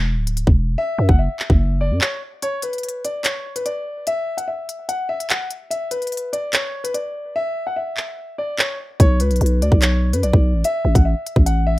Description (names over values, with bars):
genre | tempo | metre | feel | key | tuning
hip hop, drill | 146 BPM | 4/4 | half-time | B minor | A4 = 441 Hz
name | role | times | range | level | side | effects
growling 808-style bass | bass | 0.0-2.0, 9.0-11.8 s | D1 to F#2 | -17 LUFS | equal | none
drill drum kit | drums | 0.3-11.6 s | handclaps, hi-hat, kick drum | -17 LUFS | equal | none
warm concert grand piano | melody | 0.8-11.8 s | B4 to F#5 | -24 LUFS | left 2 dB | none
room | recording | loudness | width
digital ambience | rough home demo mix | -17 LUFS | side -18 dB against mid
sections
0.0-11.8 A section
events
break 0.0-0.8, 2.4-9.0; hi-hats muted 0.8-2.4, 7.4-9.0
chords
0.0 N.C.; 0.8 Dadd9/F# (rootless); 2.4 N.C.; 9.0 Bm; 10.6 A5